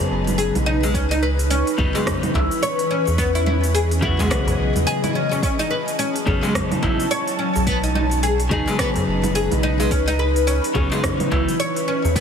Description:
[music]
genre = organic downtempo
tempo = 107 BPM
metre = 4/4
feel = swing 59% on 16ths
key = C# minor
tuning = A4 = 439 Hz
[part]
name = clean electric guitar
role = accompaniment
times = 0.0-11.5 s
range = C#3 to G#4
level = -27 LUFS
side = left 3 dB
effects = spring reverb, sidechain pumping, ping-pong delay
[part]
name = ethereal airy pad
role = sustained chords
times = 0.0-12.2 s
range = E3 to A5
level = -24 LUFS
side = left 1 dB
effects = ensemble chorus, built-in reverb, phaser, sidechain pumping
[part]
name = organic electronic drum kit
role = drums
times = 0.0-12.2 s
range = congas, hi-hat, rim click, shaker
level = -27 LUFS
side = right 2 dB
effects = overdrive
[part]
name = djembe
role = percussion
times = 0.0-12.1 s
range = none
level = -30 LUFS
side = left 2 dB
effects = none
[part]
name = warm sub bass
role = bass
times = 0.1-12.2 s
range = F#1 to E2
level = -22 LUFS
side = equal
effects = none
[part]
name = oud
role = arpeggios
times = 0.4-12.2 s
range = G#3 to C#5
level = -23 LUFS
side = equal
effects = ping-pong delay
[part]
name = electronic kick drum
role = drums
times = 0.9-12.2 s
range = none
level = -26 LUFS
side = equal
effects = none
[sound]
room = light reverb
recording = heavily compressed radio sound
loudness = -18 LUFS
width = side -7 dB against mid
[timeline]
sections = 0.0-12.2 A section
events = none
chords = 0.0 B; 0.9 C#m7; 3.2 Emaj7; 5.4 A6; 7.7 B; 9.9 C#m7

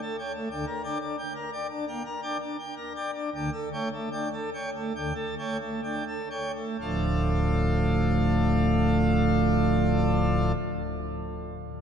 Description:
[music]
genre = classical, organ toccata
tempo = 59-93 BPM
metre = 4/4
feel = straight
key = D minor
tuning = A4 = 445 Hz
[part]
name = pipe organ, plenum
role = solo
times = 0.0-10.5 s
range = D1 to G5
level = -25 LUFS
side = equal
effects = none
[sound]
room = wet cathedral reverb, RT60 6.3 s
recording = dark, warm production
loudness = -25 LUFS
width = side -8 dB against mid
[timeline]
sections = 0.0-6.8 A section; 6.8-10.9 B section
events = slowing down 0.0-6.8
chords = 0.0 A7; 0.5 Gm/D; 3.3 A7/D; 6.8 Dm

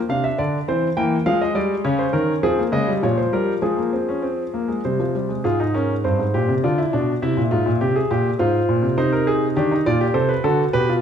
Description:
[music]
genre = classical, baroque-style 3-part fugue for grand piano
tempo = 102 BPM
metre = 3/4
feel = straight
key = F minor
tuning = A4 = 440 Hz
[part]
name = clear grand piano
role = solo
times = 0.0-11.0 s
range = G2 to G5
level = -18 LUFS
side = equal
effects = none
[sound]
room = moderate recital hall reverb, RT60 1.6 s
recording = minimal, uncompressed stereo recording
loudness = -18 LUFS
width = side -8 dB against mid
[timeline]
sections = 0.0-5.4 A section; 5.4-11.0 B section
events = none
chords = 0.1 C7; 1.3 Fm; 1.9 Db; 3.0 Bbm; 3.6 Fm; 4.8 C5; 5.4 Fm/Ab; 6.6 Bdim; 7.2 C7; 8.4 Fm/Ab; 9.0 Cm; 10.2 D7/C

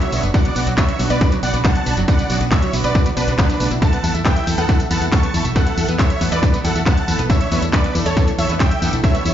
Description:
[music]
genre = uplifting trance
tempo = 138 BPM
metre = 4/4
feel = straight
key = unclear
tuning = A4 = 441 Hz
[part]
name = big supersaw lead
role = melody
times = 0.0-9.3 s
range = D4 to C#6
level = -23 LUFS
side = right 1 dB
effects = sidechain pumping, tape echo
[part]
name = wide unison pluck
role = second line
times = 0.0-9.3 s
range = B4 to C#6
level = -29 LUFS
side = right 1 dB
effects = none
[part]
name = rich studio string section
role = sustained chords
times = 0.0-9.3 s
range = B2 to A4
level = -27 LUFS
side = right 2 dB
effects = sidechain pumping
[part]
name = analog pluck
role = arpeggios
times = 0.0-9.3 s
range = F#3 to E5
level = -26 LUFS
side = equal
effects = lush chorus, sidechain pumping, digital delay
[part]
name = techno drum kit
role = drums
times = 0.0-9.3 s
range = handclaps, hi-hat, tambourine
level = -26 LUFS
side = left 1 dB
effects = none
[part]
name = solid FM bass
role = bass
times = 0.1-9.3 s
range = F#1 to E2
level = -20 LUFS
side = equal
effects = sidechain pumping
[part]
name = electronic kick drum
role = drums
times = 0.3-9.1 s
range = none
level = -18 LUFS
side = equal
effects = overdrive
[sound]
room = digital ambience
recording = played on a big sound system in a bare room, large studio reverb, nothing above 7.5 kHz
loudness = -15 LUFS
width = side -10 dB against mid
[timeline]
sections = 0.0-9.3 A section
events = none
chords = 0.0 Bmadd9; 3.8 Esus4

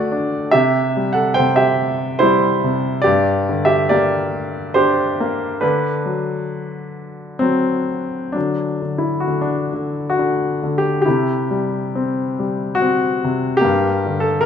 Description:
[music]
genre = classical, lyrical solo piano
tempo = 63-72 BPM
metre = 3/4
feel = rubato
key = D mixolydian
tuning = A4 = 440 Hz
[part]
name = clear baby grand piano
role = solo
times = 0.0-14.5 s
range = G2 to A5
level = -16 LUFS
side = equal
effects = none
[sound]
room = moderate recital hall reverb, RT60 1.4 s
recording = minimal, uncompressed stereo recording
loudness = -16 LUFS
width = side -8 dB against mid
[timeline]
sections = 0.0-8.4 A section; 8.4-14.5 A section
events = none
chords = 0.0 D; 0.5 C; 3.1 Gm; 5.6 D; 11.1 C; 13.6 Gm

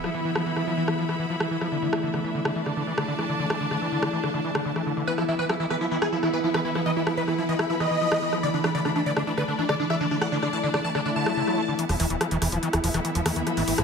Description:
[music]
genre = psychedelic trance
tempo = 143 BPM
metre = 4/4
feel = straight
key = unclear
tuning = A4 = 440 Hz
[part]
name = evolving wavetable pad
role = sustained chords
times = 0.0-13.8 s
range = E3 to E4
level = -30 LUFS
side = equal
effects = phaser, built-in reverb
[part]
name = screaming distorted acid line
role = riff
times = 0.0-13.8 s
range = C#3 to A3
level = -29 LUFS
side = equal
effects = distortion, chorus, auto-pan, ping-pong delay
[part]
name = drum and bass drum kit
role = drums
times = 0.0-13.8 s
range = hi-hat, rim click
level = -30 LUFS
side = equal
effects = overdrive, low-pass filter on hats, low-pass filter on snare
[part]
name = sub drop, swell and riser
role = sound effects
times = 0.0, 11.1-13.8 s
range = none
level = -33 LUFS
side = left 4 dB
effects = none
[part]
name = bright symphonic string section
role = texture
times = 0.0-13.8 s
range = A3 to B5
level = -31 LUFS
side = left 1 dB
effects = none
[part]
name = dense compressed supersaw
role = melody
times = 5.1-11.7 s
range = D4 to A5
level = -27 LUFS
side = equal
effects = phaser, digital delay
[part]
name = plucky analog bass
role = bass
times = 11.9-13.8 s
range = E1 to E2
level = -27 LUFS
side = equal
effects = none
[sound]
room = moderate plate reverb, RT60 1.6 s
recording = none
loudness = -23 LUFS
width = side -6 dB against mid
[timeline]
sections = 0.0-11.8 A section; 11.8-13.8 B section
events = filter sweep on ambient pad 0.0-11.8, 11.8-13.8; swell 11.1-11.8; build-up 11.8-13.8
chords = 0.0 E5; 1.7 D5; 5.1 E5; 8.4 D5; 11.8 E5

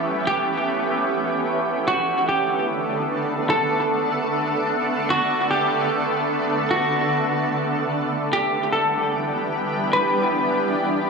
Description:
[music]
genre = hip hop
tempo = 149 BPM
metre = 4/4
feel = half-time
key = D major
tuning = A4 = 441 Hz
[part]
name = shimmering ambient pad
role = sustained chords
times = 0.0-11.1 s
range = D3 to A4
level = -22 LUFS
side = right 1 dB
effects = chorus, built-in reverb
[part]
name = semi-hollow electric guitar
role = melody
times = 0.3-11.1 s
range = F#4 to B4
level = -23 LUFS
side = equal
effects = analog delay
[sound]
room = moderate spring reverb, RT60 1.5 s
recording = echo-heavy mix, small room ambience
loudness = -19 LUFS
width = side -4 dB against mid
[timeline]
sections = 0.0-1.9 A section; 1.9-11.1 B section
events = none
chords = 0.0 A9; 1.9 D6; 8.3 G6

